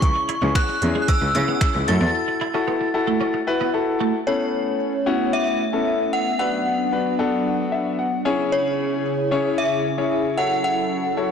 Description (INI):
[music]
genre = dance-pop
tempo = 113 BPM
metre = 4/4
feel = straight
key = A major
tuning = A4 = 442 Hz
[part]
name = synth chime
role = melody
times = 0.0-11.3 s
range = C#5 to A6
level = -24 LUFS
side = equal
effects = ensemble chorus, tremolo, tape echo
[part]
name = warm grand piano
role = accompaniment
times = 0.0-11.3 s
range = B3 to G#5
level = -23 LUFS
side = left 4 dB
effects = sidechain pumping
[part]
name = clear cello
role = bass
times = 0.0-2.1 s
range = C#2 to C#3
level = -22 LUFS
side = right 1 dB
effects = sidechain pumping
[part]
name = smooth R&B drum kit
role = drums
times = 0.0-2.0 s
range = finger snaps, hi-hat, kick drum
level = -21 LUFS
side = equal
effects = overdrive, soft clipping on snare
[part]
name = twelve-string electric guitar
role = riff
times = 0.2-4.1 s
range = G#3 to E4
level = -28 LUFS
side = right 8 dB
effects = ensemble chorus
[part]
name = airy breathy pad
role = sustained chords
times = 4.3-11.3 s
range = C#3 to A4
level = -26 LUFS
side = right 1 dB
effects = chorus, sidechain pumping
[sound]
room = moderate lush hall reverb, RT60 1.9 s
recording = blown-out, overdriven recording, overdrive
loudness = -19 LUFS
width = side -7 dB against mid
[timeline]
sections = 0.0-4.3 A section; 4.3-11.3 B section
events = break 2.1-4.3; grand piano fill 7.5-8.5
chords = 0.0 C#m; 1.9 F#m7; 4.3 Aadd9; 6.4 Bm; 8.3 C#m; 10.4 F#m7